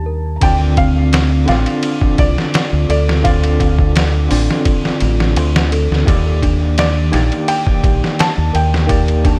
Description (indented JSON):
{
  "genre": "trip hop",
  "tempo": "85 BPM",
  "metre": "4/4",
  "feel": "straight",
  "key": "D phrygian",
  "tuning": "A4 = 440 Hz",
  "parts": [
    { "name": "felt-muted upright piano", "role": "melody", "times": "0.0-9.2 s", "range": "D5 to A5", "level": "-24 LUFS", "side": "equal", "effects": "tape echo" },
    { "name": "overdriven tine electric piano", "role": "accompaniment", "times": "0.0-9.4 s", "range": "D3 to D5", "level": "-23 LUFS", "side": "equal", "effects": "tremolo, vintage 12-bit sampler grit, dub echo" },
    { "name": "celesta", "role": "arpeggios", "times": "0.0-9.4 s", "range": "C4 to Bb4", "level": "-26 LUFS", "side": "equal", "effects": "vintage 12-bit sampler grit, dub echo" },
    { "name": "deep dub fingered electric bass", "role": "bass", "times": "0.0-9.4 s", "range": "A1 to Eb2", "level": "-17 LUFS", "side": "equal", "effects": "none" },
    { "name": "trip hop sampler-style drum kit", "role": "drums", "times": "0.4-9.4 s", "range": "hi-hat, kick drum, ride cymbal, snare drum", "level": "-19 LUFS", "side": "equal", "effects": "dub echo" }
  ],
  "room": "light reverb",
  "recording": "echo-heavy mix",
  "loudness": "-14 LUFS",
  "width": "mono",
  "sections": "0.4-9.4 A section",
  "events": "none",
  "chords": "0.4 Dm7; 6.1 Ebmaj7"
}